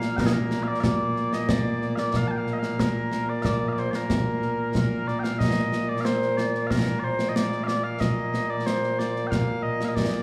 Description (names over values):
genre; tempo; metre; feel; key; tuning
scottish traditional, Scottish pipe music; 92 BPM; 2/4; straight; Bb major; A4 = 441 Hz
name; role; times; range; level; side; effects
mellow small bagpipes; melody; 0.0-10.2 s; Bb2 to A5; -28 LUFS; equal; none
concert snare drum and concert bass drum; drums; 0.0-10.2 s; none; -29 LUFS; equal; none
room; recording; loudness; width
wet recital hall reverb, RT60 1.6 s; recorded in a church or concert hall, small room ambience; -25 LUFS; mono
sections
0.0-5.4 A section; 5.4-10.2 B section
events
none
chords
none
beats
| 0.18 0.83 | 1.49 2.14 | 2.79 3.44 | 4.09 4.75 | 5.40 6.05 | 6.70 7.35 | 8.01 8.66 | 9.31 9.96